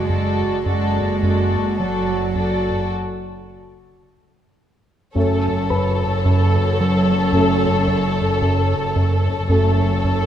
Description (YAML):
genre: cinematic, suspense film score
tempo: 55 BPM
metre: 4/4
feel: straight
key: F# minor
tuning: A4 = 440 Hz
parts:
  - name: dark studio violin section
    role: melody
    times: 0.0-10.3 s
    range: C#5 to D5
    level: -30 LUFS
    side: left 7 dB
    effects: none
  - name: warm studio violin section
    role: second line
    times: 0.0-10.3 s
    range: A4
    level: -26 LUFS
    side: left 3 dB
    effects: none
  - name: warm studio viola section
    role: accompaniment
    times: 0.0-10.3 s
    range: F#4 to A4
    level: -26 LUFS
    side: right 1 dB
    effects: none
  - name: rich studio double bass section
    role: bass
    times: 0.0-10.3 s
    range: F#1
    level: -25 LUFS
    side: right 1 dB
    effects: none
  - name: warm studio cello section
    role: bass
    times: 0.0-10.3 s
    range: F#2 to G#3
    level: -24 LUFS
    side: right 1 dB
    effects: none
  - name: round analog bass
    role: riff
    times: 0.1-10.3 s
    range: F#2 to F#3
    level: -21 LUFS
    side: right 1 dB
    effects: none
  - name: warm trombone section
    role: sustained chords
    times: 5.1-9.9 s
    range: F#3 to A3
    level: -27 LUFS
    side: right 4 dB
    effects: none
  - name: mellow French horn section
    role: sustained chords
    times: 5.2-9.9 s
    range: C#4 to A4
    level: -24 LUFS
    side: left 3 dB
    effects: none
  - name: dark grand piano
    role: texture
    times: 5.7-10.3 s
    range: B4 to B5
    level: -32 LUFS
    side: left 2 dB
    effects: none
room: moderate concert hall reverb, RT60 2.2 s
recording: none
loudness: -16 LUFS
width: side -10 dB against mid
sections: 0.0-5.2 A section; 5.2-10.3 B section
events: break 2.9-5.2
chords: 0.0 D/F#; 5.2 F#m